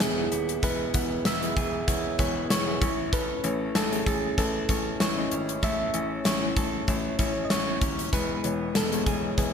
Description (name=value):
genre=1980s-style pop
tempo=96 BPM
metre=4/4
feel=swing 55% on 16ths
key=unclear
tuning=A4 = 439 Hz
part: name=soft struck synth lead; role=melody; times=0.0-9.5 s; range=G#4 to E5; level=-32 LUFS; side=right 2 dB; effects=chorus, ping-pong delay
part: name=tine electric piano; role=accompaniment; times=0.0-9.5 s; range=G#3 to F#5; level=-31 LUFS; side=left 3 dB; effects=analog chorus
part: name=direct-recorded clean electric guitar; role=riff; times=0.0-9.5 s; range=B3 to A4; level=-36 LUFS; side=right 6 dB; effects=wide subtle chorus, ping-pong delay
part: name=clear grand piano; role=bass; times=0.0-9.5 s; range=D#1 to A1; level=-34 LUFS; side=left 1 dB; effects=none
part: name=gated 80s drum kit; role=drums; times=0.0-9.5 s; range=hi-hat, kick drum, snare drum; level=-27 LUFS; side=equal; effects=gated reverb
room=moderate lush hall reverb, RT60 2.5 s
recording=bright 1980s-style digital production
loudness=-24 LUFS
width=side -7 dB against mid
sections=0.0-9.5 A section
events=none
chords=0.0 E; 2.8 A; 8.1 E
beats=0.00 | 0.63 1.25 1.88 2.50 | 3.13 3.75 4.38 5.00 | 5.63 6.25 6.88 7.50 | 8.13 8.75 9.38